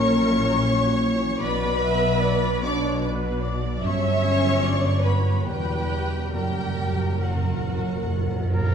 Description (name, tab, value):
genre	classical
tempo	67-80 BPM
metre	3/4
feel	rubato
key	B minor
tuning	A4 = 435 Hz
part	warm studio violin section	melody	0.0-8.7 s	F#5 to D6	-31 LUFS	left 4 dB	none
part	rich symphonic violin section	second line	0.0-8.6 s	F#4 to D5	-28 LUFS	equal	none
part	rich symphonic viola section	accompaniment	0.0-8.5 s	A#4 to E5	-31 LUFS	right 2 dB	none
part	dark French horn section	sustained chords	0.0-8.6 s	F#3 to D4	-30 LUFS	left 2 dB	none
part	concert harp	arpeggios	0.0-8.7 s	E2 to Bb5	-32 LUFS	left 5 dB	none
part	rich symphonic cello section	bass	0.0-8.7 s	E2 to B2	-27 LUFS	equal	none
part	rich symphonic double bass section	bass	0.0-8.7 s	E1 to B1	-27 LUFS	right 2 dB	none
part	timpani	percussion	6.3-8.7 s	F#2	-26 LUFS	right 2 dB	none
part	warm oboe	second line	8.5-8.7 s	A#4	-31 LUFS	right 2 dB	none
room	wet scoring stage reverb, RT60 1.7 s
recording	vinyl crackle, studio ambience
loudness	-20 LUFS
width	side -7 dB against mid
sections	0.0-8.7 A section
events	timpani fill 6.3-8.7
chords	0.0 F#7/A#; 1.4 Bm; 3.8 Gmaj7; 5.5 C#m7b5/E; 6.3 F#